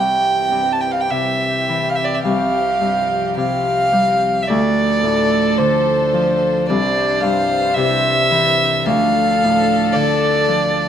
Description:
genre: celtic folk, Celtic slow air.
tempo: 51-57 BPM.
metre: 4/4.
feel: rubato.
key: D minor.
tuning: A4 = 440 Hz.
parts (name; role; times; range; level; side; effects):
dark fiddle; melody; 0.0-10.9 s; C5 to A5; -16 LUFS; right 1 dB; none.
Celtic harp; accompaniment; 0.0-10.9 s; C2 to G3; -20 LUFS; equal; none.
dark studio string section; sustained chords; 0.0-10.9 s; C3 to C5; -24 LUFS; left 1 dB; none.
room: moderate recital hall reverb, RT60 1.3 s.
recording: minimal, uncompressed stereo recording.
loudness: -14 LUFS.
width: side -9 dB against mid.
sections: 0.0-10.9 A section.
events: none.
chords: 0.0 C; 2.2 Fsus2/C; 4.5 Dm; 6.7 Cadd9; 8.9 Dm.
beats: 1.11 2.25 3.37 | 4.49 5.59 6.68 7.76 | 8.87 9.95.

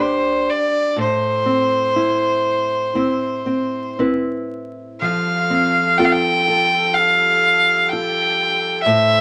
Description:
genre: celtic folk, Celtic slow air.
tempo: 57-65 BPM.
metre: 4/4.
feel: rubato.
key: unclear.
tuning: A4 = 440 Hz.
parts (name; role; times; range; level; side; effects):
clear fiddle; melody; 0.0-9.2 s; C5 to G5; -18 LUFS; equal; none.
nylon-string guitar; accompaniment; 0.0-9.2 s; A2 to B4; -24 LUFS; equal; none.
mellow woodwind section; sustained chords; 5.0-9.2 s; G3 to C5; -29 LUFS; equal; none.
room: moderate small room reverb, RT60 0.5 s.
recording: vinyl crackle.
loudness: -18 LUFS.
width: mono.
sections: 0.0-5.0 A section; 5.0-9.2 B section.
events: none.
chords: 0.0 G; 1.0 Amadd9; 5.0 Fadd9.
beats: | 0.97 1.96 2.96 4.00 | 5.01 6.00 6.97 7.92 | 8.86.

